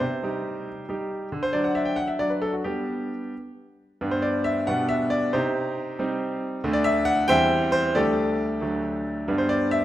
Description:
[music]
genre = classical-period piano sonatina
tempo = 91 BPM (dotted quarters)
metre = 6/8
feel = straight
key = G major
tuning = A4 = 440 Hz
[part]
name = bright concert grand piano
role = solo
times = 0.0-9.8 s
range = D2 to G5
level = -22 LUFS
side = equal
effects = none
[sound]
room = wet recital hall reverb, RT60 1.6 s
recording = none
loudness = -22 LUFS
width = side -13 dB against mid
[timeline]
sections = 0.0-4.0 A section; 4.0-9.8 A section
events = none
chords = 0.0 Cm; 1.3 D; 2.6 G; 4.7 G/B; 5.3 Cm; 6.6 D5; 7.3 C/E; 8.0 Dsus4; 8.6 D; 9.3 G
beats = | 0.01 0.66 | 1.31 1.97 | 2.64 3.33 | 4.01 4.67 | 5.33 5.99 | 6.64 7.30 | 7.96 8.62 | 9.29

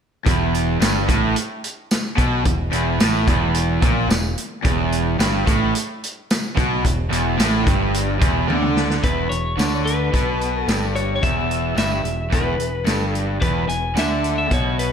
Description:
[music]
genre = classic rock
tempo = 109 BPM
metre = 4/4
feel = straight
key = unclear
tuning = A4 = 438 Hz
[part]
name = cranked stack guitar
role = riff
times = 0.2-14.9 s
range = E2 to D3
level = -24 LUFS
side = left 10 dB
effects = overdrive
[part]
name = raw garage guitar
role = riff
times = 0.3-14.9 s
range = E2 to D3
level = -23 LUFS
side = right 11 dB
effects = overdrive
[part]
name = picked electric bass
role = bass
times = 0.3-14.9 s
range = E1 to D2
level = -24 LUFS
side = equal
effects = none
[part]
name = vintage drum kit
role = drums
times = 0.3-14.9 s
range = hi-hat, kick drum, snare drum, tambourine, toms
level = -21 LUFS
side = equal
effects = none
[part]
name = lightly driven lead guitar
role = melody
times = 9.0-14.9 s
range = B4 to G#5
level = -24 LUFS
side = left 3 dB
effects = none
[sound]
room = moderate recital hall reverb, RT60 1.4 s, studio ambience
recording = big arena sound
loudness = -17 LUFS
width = side -7 dB against mid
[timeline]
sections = 0.3-9.0 A section; 9.0-14.9 B section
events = drum fill 8.5-9.0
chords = 0.3 E5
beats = | 0.26 0.81 1.35 1.90 | 2.45 3.00 3.55 4.10 | 4.65 5.19 5.74 6.29 | 6.84 7.39 7.93 8.48 | 9.03 9.58 10.13 10.68 | 11.23 11.77 12.32 12.87 | 13.42 13.96 14.51

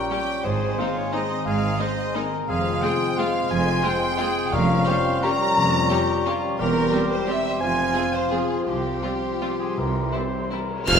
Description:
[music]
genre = classical, orchestral ballroom waltz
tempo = 155-191 BPM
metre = 3/4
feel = rubato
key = F minor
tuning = A4 = 437 Hz
[part]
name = mellow clarinet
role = second line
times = 0.0-11.0 s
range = F4 to Bb5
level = -30 LUFS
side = equal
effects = none
[part]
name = mellow concert flute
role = second line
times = 0.0-11.0 s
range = F5 to Db6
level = -31 LUFS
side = left 3 dB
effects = none
[part]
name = mellow cor anglais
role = second line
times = 0.0-11.0 s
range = Eb4 to C5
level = -30 LUFS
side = right 1 dB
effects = none
[part]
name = rich studio violin section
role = second line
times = 0.0-10.7 s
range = G4 to Bb5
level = -29 LUFS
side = equal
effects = none
[part]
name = mellow bassoon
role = accompaniment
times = 0.0-11.0 s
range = E3 to Ab3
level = -32 LUFS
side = right 1 dB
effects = none
[part]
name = dark French horn section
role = sustained chords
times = 0.0-10.7 s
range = E3 to Db4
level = -31 LUFS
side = left 1 dB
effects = none
[part]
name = concert harp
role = arpeggios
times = 0.0-11.0 s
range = E2 to C6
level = -30 LUFS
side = left 8 dB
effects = none
[part]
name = rich symphonic violin section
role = melody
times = 0.1-11.0 s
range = Eb4 to F6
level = -29 LUFS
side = left 2 dB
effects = none
[part]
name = rich chamber viola section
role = accompaniment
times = 0.1-10.6 s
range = F3 to Db4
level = -34 LUFS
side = right 2 dB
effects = none
[part]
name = clear chamber double bass section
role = bass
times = 0.4-11.0 s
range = E1 to C2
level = -31 LUFS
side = right 3 dB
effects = none
[part]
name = clear studio cello section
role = bass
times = 0.4-11.0 s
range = C2 to Ab2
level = -30 LUFS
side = right 3 dB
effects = none
[part]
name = timpani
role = percussion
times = 4.5-5.0, 9.8-10.3 s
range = F2 to C3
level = -32 LUFS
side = right 1 dB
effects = none
[part]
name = cymbal swell, clash cymbals and concert bass drum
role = percussion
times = 8.7-11.0 s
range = none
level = -31 LUFS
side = left 1 dB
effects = none
[part]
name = warm tuba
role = bass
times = 10.9-11.0 s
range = F1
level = -22 LUFS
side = right 5 dB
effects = none
[sound]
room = wet concert hall reverb, RT60 1.7 s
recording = minimal, uncompressed stereo recording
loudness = -20 LUFS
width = side -7 dB against mid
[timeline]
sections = 0.0-10.9 A section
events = none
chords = 0.4 Ab; 2.5 Fm; 4.5 Gm7b5/F; 6.6 C/E; 7.6 Fm; 8.7 Csus4; 9.8 C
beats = 0.11 | 0.45 0.79 1.14 | 1.47 1.80 2.15 | 2.49 2.83 3.18 | 3.51 3.84 4.20 | 4.53 4.87 5.23 | 5.57 5.91 6.26 | 6.59 6.93 7.28 | 7.61 7.96 8.32 | 8.67 9.04 9.42 | 9.78 10.14 10.52 | 10.87

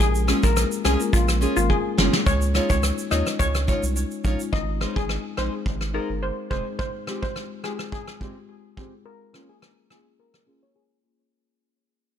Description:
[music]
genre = dancehall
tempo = 106 BPM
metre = 4/4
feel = straight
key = unclear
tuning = A4 = 438 Hz
[part]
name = steel pan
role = melody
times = 0.0-11.2 s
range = F4 to Eb5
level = -28 LUFS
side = left 3 dB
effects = low-pass filter, tape echo
[part]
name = saturated sub bass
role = bass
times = 0.0-6.6 s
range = F1 to Eb2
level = -24 LUFS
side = right 1 dB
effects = none
[part]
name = soft brush drum kit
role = drums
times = 0.0-10.5 s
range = hi-hat, kick drum, rim click, shaker, snare drum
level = -25 LUFS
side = equal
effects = none
[part]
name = marimba with medium mallets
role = accompaniment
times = 0.3-11.2 s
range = Ab3 to Bb4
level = -30 LUFS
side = left 6 dB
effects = sidechain pumping, low-pass filter
[part]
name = nylon-string guitar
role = arpeggios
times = 0.3-10.6 s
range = Ab3 to Db5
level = -30 LUFS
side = right 2 dB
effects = low-pass filter, tape echo
[sound]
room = small room ambience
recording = none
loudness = -21 LUFS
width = side -9 dB against mid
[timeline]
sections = 0.0-2.3 A section; 2.3-11.3 B section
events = drum fill 1.7-2.3; fade-out 2.3-11.3; filter sweep 2.3-11.3; break 10.8-11.3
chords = 0.0 Bbm7; 2.3 Dbadd9; 4.5 Ab; 6.8 Fmadd9/Ab; 9.1 Bbm7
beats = | 0.00 0.56 1.13 1.70 | 2.26 2.83 3.40 3.96 | 4.53 5.09 5.66 6.23 | 6.79 7.36 7.92 8.49 | 9.06 9.62 10.19 10.75

